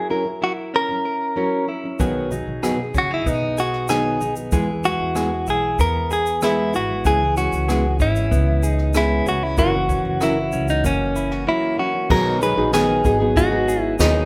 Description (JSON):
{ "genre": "acoustic pop", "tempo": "95 BPM", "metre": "4/4", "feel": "straight", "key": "B major", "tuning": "A4 = 440 Hz", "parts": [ { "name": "direct-recorded clean electric guitar", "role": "melody", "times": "0.0-14.3 s", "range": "C#4 to B4", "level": "-24 LUFS", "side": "equal", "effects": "none" }, { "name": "nylon-string guitar", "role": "accompaniment", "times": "0.0-14.3 s", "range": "B2 to A#4", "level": "-26 LUFS", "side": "equal", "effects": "none" }, { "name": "direct-recorded clean electric guitar", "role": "arpeggios", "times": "0.0-14.3 s", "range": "E3 to A#4", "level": "-30 LUFS", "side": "equal", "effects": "none" }, { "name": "upright bass", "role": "bass", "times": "2.0-14.3 s", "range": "F#1 to E2", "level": "-27 LUFS", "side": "equal", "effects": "none" }, { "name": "jazz brush drum kit", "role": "drums", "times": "2.0-14.1 s", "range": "crash cymbal, kick drum, rim click, shaker, snare drum", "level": "-27 LUFS", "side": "equal", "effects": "none" }, { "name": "dark upright piano", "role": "accompaniment", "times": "12.1-14.3 s", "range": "G#3 to F#4", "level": "-31 LUFS", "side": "equal", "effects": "none" } ], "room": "moderate recital hall reverb, RT60 1.5 s", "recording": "recorded in a church or concert hall", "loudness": "-20 LUFS", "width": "mono", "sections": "0.0-12.1 A section; 12.1-14.3 B section", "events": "none", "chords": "0.0 F#7; 2.0 B6; 4.5 E; 7.1 C#m7; 9.6 F#7; 12.1 B6" }